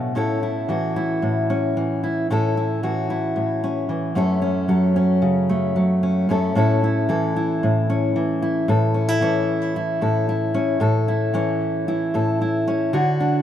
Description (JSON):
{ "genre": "folk", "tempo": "112 BPM", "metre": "4/4", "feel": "straight", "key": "A major", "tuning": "A4 = 440 Hz", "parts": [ { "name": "fingerpicked steel-string acoustic guitar", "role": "solo", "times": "0.0-13.4 s", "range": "F#2 to A4", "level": "-18 LUFS", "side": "equal", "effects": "digital delay" } ], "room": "moderate lush hall reverb, RT60 2.5 s", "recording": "rough home demo mix", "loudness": "-18 LUFS", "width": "side -10 dB against mid", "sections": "0.0-8.7 A section; 8.7-13.4 B section", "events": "build-up 8.7-13.4", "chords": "0.1 A; 4.2 F#m; 6.6 A" }